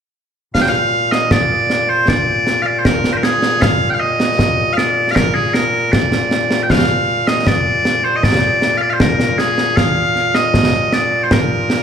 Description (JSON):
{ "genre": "scottish traditional, Scottish pipe music", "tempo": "78 BPM", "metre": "2/4", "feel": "straight", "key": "Bb mixolydian", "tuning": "A4 = 440 Hz", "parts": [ { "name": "loud bright bagpipes", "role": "melody", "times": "0.5-11.8 s", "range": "Bb2 to G5", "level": "-15 LUFS", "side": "equal", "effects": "slapback echo" }, { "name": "concert snare drum and concert bass drum", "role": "drums", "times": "0.5-11.8 s", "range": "none", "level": "-16 LUFS", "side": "equal", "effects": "none" } ], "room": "light reverb", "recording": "live gig heard through the venue's PA, club reverb", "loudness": "-12 LUFS", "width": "side -8 dB against mid", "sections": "0.5-11.8 A section", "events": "none", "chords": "none" }